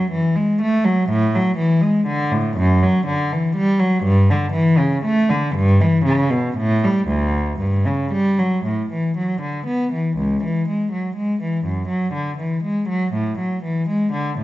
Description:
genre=classical, baroque-style suite movement for unaccompanied cello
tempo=121 BPM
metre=3/4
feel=rubato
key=D major, A major from 8.6 s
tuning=A4 = 440 Hz
part: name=rich cello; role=solo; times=0.0-14.4 s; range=C#2 to B3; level=-17 LUFS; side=equal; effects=none
room=wet recital hall reverb, RT60 1.3 s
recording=dark, warm production, nothing above 7.8 kHz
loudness=-17 LUFS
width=side -16 dB against mid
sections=0.0-8.6 A section; 8.6-14.4 A section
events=none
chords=none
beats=0.11 0.59 | 1.08 1.57 2.06 | 2.56 3.06 3.55 | 4.05 4.54 5.04 | 5.55 6.06 6.56 | 7.09 7.61 8.13 | 8.65 9.15 9.66 | 10.17 10.68 11.17 | 11.66 12.15 12.64 | 13.15 13.65 14.13

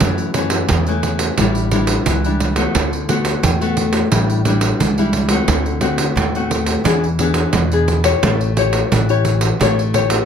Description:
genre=samba and choro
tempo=88 BPM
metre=4/4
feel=straight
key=unclear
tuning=A4 = 439 Hz
part: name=nylon-string guitar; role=accompaniment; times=0.0-10.3 s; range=F#2 to C#5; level=-19 LUFS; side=left 4 dB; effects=none
part: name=upright bass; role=bass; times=0.0-10.2 s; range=A1 to F#2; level=-19 LUFS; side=equal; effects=none
part: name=pandeiro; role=percussion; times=0.0-10.3 s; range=none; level=-19 LUFS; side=right 4 dB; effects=none
room=light reverb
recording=close, detailed microphones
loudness=-14 LUFS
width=side -7 dB against mid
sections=0.0-10.3 A section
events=none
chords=0.0 F#m7; 1.4 A7sus4; 2.8 D6; 4.1 A7sus4; 5.5 D7; 6.9 E7; 8.2 A7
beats=| 0.01 0.70 1.38 2.07 | 2.75 3.43 4.12 4.80 | 5.49 6.17 6.86 7.54 | 8.23 8.91 9.60

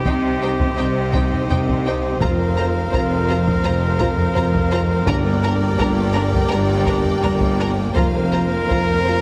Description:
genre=cinematic, epic orchestral film score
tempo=83 BPM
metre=4/4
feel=straight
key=unclear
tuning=A4 = 437 Hz
part: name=mellow French horn section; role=sustained chords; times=0.0-9.2 s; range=C4 to G4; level=-30 LUFS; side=equal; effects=none
part: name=rich symphonic string section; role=sustained chords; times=0.0-9.2 s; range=Bb3 to G5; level=-29 LUFS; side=equal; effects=none
part: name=bright trumpet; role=stabs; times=0.0-9.2 s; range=G4 to Bb4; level=-28 LUFS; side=equal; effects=none
part: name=rich symphonic cello section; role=bass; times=0.0-9.2 s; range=F2 to C3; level=-25 LUFS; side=equal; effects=none
part: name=rich symphonic double bass section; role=bass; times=0.0-9.2 s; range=F1 to C2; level=-25 LUFS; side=equal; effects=none
part: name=taiko ensemble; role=drums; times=0.0-9.2 s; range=none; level=-26 LUFS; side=equal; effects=none
part: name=warm symphonic violin section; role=melody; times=0.1-9.2 s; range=G5 to Bb5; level=-34 LUFS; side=equal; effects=none
part: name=warm symphonic violin section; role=second line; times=0.1-9.1 s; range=Bb4 to C5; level=-32 LUFS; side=equal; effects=none
part: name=clear symphonic viola section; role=accompaniment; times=0.1-9.1 s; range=D4 to F4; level=-32 LUFS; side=equal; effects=none
part: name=timpani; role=percussion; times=5.1-6.1 s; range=G2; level=-30 LUFS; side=equal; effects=none
room=moderate scoring stage reverb, RT60 1.9 s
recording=heavily compressed radio sound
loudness=-19 LUFS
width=mono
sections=0.0-9.2 A section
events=none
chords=0.0 Cm; 2.2 Fsus4; 5.1 Gm; 8.0 Fsus4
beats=0.05 0.78 1.50 | 2.21 2.93 3.64 4.35 | 5.07 5.79 6.51 7.24 | 7.97 8.71

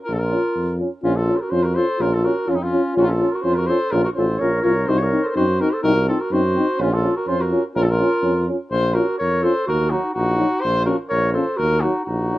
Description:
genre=balkan folk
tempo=125 BPM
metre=2/4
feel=straight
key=Bb harmonic minor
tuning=A4 = 440 Hz
part: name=mellow cornet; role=melody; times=0.0-12.4 s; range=Eb4 to Db5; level=-23 LUFS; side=left 1 dB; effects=plate reverb
part: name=dark clarinet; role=second line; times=0.1-12.4 s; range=C4 to Bb4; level=-24 LUFS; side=right 2 dB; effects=plate reverb
part: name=warm tuba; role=bass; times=0.1-12.3 s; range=A1 to Gb2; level=-22 LUFS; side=equal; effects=none
part: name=mellow euphonium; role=accompaniment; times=0.3-12.4 s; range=Db4 to F4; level=-22 LUFS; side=left 2 dB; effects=none
part: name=warm euphonium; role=accompaniment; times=0.3-12.4 s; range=F3 to Db4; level=-27 LUFS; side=right 4 dB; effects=none
room=moderate studio reverb, RT60 0.5 s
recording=rough home demo mix, nothing above 10.5 kHz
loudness=-17 LUFS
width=side -16 dB against mid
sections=0.0-1.0 A section; 1.0-8.7 A section; 8.7-12.4 B section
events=none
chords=0.0 Bbm; 4.9 Cdim; 6.8 Bbm; 9.7 Ebm; 10.6 Bbm; 11.6 Ebm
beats=| 0.08 0.56 | 1.04 1.52 | 2.00 2.48 | 2.96 3.43 | 3.91 4.39 | 4.87 5.35 | 5.83 6.31 | 6.79 7.27 | 7.75 8.23 | 8.71 9.19 | 9.67 10.15 | 10.63 11.11 | 11.59 12.07

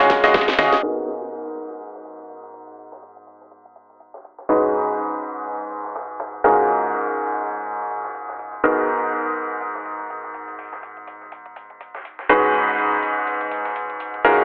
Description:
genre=piano house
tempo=123 BPM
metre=4/4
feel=swing 57% on 16ths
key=G# dorian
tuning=A4 = 442 Hz
part: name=clear baby grand piano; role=riff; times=0.0-14.4 s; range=G#2 to D#5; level=-19 LUFS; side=equal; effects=sidechain pumping, analog delay
part: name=dusty soul sampler-style drum kit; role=drums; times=0.1-14.1 s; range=hi-hat, snare drum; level=-33 LUFS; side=equal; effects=none
part: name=electronic kick drum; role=drums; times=0.1-0.5 s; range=none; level=-28 LUFS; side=equal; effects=overdrive
part: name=garage drum kit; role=drums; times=0.1-14.4 s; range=hi-hat, snare drum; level=-28 LUFS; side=equal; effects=low-pass filter on hats, low-pass filter on snare, analog delay
part: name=solid FM bass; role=bass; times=0.6-0.7 s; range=D#2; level=-32 LUFS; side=equal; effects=sidechain pumping
room=wet spring reverb, RT60 2.5 s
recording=echo-heavy mix, low-pass filter, telephone sound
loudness=-18 LUFS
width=side -35 dB against mid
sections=0.8-14.4 A section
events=drum fill 0.0-0.8; filter sweep 0.8-14.4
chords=0.0 F#maj7sus2; 0.8 G#m9; 4.5 C#9sus4/G#; 6.4 F#maj9/G#; 8.6 G#m9; 12.3 C#9sus4/G#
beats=0.34 | 0.83 1.32 1.81 2.29 | 2.78 3.27 3.76 4.25 | 4.73 5.22 5.71 6.20 | 6.68 7.17 7.66 8.15 | 8.64 9.12 9.61 10.10 | 10.59 11.07 11.56 12.05 | 12.54 13.03 13.51 14.00

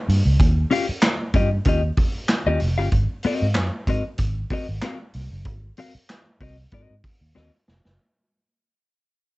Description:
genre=funk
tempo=95 BPM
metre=4/4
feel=straight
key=unclear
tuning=A4 = 437 Hz
part: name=vintage muted fingered electric bass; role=bass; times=0.1-8.0 s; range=F1 to Ab2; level=-21 LUFS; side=equal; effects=none
part: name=vintage drum kit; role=drums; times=0.1-8.0 s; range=handclaps, hi-hat, kick drum, snare drum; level=-22 LUFS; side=equal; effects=none
part: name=clean electric guitar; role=accompaniment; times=0.7-7.5 s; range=C4 to F5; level=-23 LUFS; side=left 3 dB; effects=none
room=light reverb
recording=dark, warm production, nothing above 8.0 kHz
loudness=-19 LUFS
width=side -20 dB against mid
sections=0.0-8.0 A section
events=fade-out 0.0-8.0; drum fill 7.4-8.0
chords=0.0 Eb9; 2.9 Ab9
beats=| 0.40 1.03 1.66 2.30 | 2.93 3.56 4.20 4.83 | 5.46 6.09 6.73 7.36

